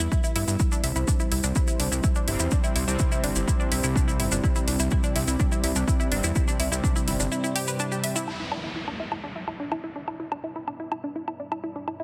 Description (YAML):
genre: melodic techno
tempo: 125 BPM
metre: 4/4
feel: straight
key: E minor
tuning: A4 = 439 Hz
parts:
  - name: dark analog pad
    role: sustained chords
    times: 0.0-12.0 s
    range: G3 to D5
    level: -37 LUFS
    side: equal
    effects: chorus, sidechain pumping
  - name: analog pluck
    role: arpeggios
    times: 0.0-12.0 s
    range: D4 to E5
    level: -34 LUFS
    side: equal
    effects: chorus, phaser, sidechain pumping, digital delay
  - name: fat analog bass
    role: bass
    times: 0.0-7.3 s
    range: G1 to G2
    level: -30 LUFS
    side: equal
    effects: sidechain pumping
  - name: maracas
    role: percussion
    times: 0.0-8.3 s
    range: none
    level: -34 LUFS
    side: equal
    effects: none
  - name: electronic kick drum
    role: drums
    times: 0.1-6.9 s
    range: none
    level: -27 LUFS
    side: equal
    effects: none
  - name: electronic hi-hat and woodblock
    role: drums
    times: 0.4-12.0 s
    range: none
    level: -34 LUFS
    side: equal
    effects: sidechain pumping on hats, sidechain pumping on perc
  - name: analog synth brass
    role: stabs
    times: 2.3-8.3 s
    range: C3 to C4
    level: -34 LUFS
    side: equal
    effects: chorus, sidechain pumping, digital delay
  - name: downlifter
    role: sound effects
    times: 8.3-12.0 s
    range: none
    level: -39 LUFS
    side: equal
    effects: none
room: light reverb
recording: dense, heavily limited modern master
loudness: -26 LUFS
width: mono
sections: 0.0-8.3 A section; 8.3-12.0 B section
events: filter sweep on synth arpeggio sound 8.3-12.0; filter sweep on analog synth pad 8.3-12.0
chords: 0.0 Em; 0.6 C; 8.3 Em